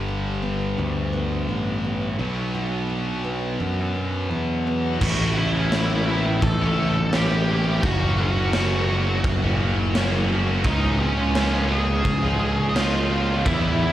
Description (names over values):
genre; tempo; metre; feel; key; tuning
quiet-loud alternative rock; 85 BPM; 4/4; straight; A mixolydian; A4 = 440 Hz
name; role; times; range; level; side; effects
picked steel-string acoustic guitar; arpeggios; 0.0-5.0 s; G2 to G4; -32 LUFS; right 1 dB; slapback echo
high-gain distorted guitar; riff; 0.0-13.9 s; G2 to F#4; -27 LUFS; equal; distortion
fuzz picked electric bass; bass; 0.0-13.9 s; F#1 to F#2; -23 LUFS; equal; overdrive
octave-fuzz lead guitar; melody; 5.0-13.9 s; C#4 to A5; -27 LUFS; right 1 dB; distortion, slapback echo
raw garage drum kit; drums; 5.0-13.6 s; crash cymbal, kick drum, snare drum; -25 LUFS; equal; none
room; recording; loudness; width
little or no reverb; live gig heard through the venue's PA, club reverb; -20 LUFS; side -13 dB against mid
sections
0.0-5.0 A section; 5.0-13.9 B section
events
none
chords
0.0 G; 2.2 Bm; 5.0 A; 7.8 F#; 10.7 C#